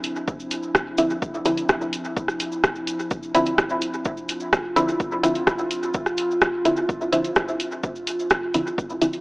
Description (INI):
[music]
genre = dub techno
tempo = 127 BPM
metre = 4/4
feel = straight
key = D minor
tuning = A4 = 442 Hz
[part]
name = warbly tape-like pad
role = sustained chords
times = 0.0-9.2 s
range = F3 to F4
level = -28 LUFS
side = equal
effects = chorus, built-in reverb, sidechain pumping
[part]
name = punchy analog drum machine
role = drums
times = 0.0-9.2 s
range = hi-hat, rim click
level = -23 LUFS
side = equal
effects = dub echo
[part]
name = cabasa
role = percussion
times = 0.0-9.2 s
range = none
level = -38 LUFS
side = equal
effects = none
[part]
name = electronic kick drum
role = drums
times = 0.3-8.9 s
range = none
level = -28 LUFS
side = equal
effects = none
[part]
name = filtered dub chord stab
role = stabs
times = 1.0-9.2 s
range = D3 to E4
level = -23 LUFS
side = equal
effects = chorus, phaser, sidechain pumping, dub echo
[sound]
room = moderate lush hall reverb, RT60 2.1 s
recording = dry, gritty hardware recording, AM radio sound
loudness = -21 LUFS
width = side -25 dB against mid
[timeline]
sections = 0.0-9.2 A section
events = none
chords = 0.0 Dm9